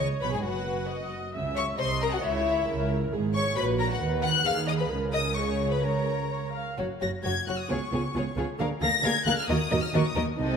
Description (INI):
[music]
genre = quick classical-period movement for string orchestra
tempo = 134 BPM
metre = 2/4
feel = rubato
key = F# major from 3.1 s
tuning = A4 = 441 Hz
[part]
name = warm studio violin section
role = melody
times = 0.0-10.1 s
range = E5 to A#6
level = -30 LUFS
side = left 5 dB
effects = none
[part]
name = warm chamber violin section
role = second line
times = 0.0-10.6 s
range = E4 to F#5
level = -31 LUFS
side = left 5 dB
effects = none
[part]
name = warm chamber viola section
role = accompaniment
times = 0.0-10.6 s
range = F#3 to E#5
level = -32 LUFS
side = right 2 dB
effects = none
[part]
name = dark chamber cello section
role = bass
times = 0.0-10.6 s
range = F#2 to D#3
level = -33 LUFS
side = right 3 dB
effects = none
[part]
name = dark chamber double bass section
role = bass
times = 0.0-10.6 s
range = F#1 to D#2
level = -32 LUFS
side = right 4 dB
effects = none
[sound]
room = moderate concert hall reverb, RT60 2.1 s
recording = none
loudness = -25 LUFS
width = side -6 dB against mid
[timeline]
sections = 0.0-6.8 A section; 6.8-10.6 B section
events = none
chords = 0.0 G#madd11; 0.4 B/F#; 1.3 C#m; 1.8 Cm7b5; 2.2 C#m; 3.1 C#5/G#; 3.6 F#/A#; 4.0 G#5/D#; 4.9 C#5; 6.3 C#; 6.8 F#5; 7.7 C#7; 8.6 A#7/D; 9.5 D#m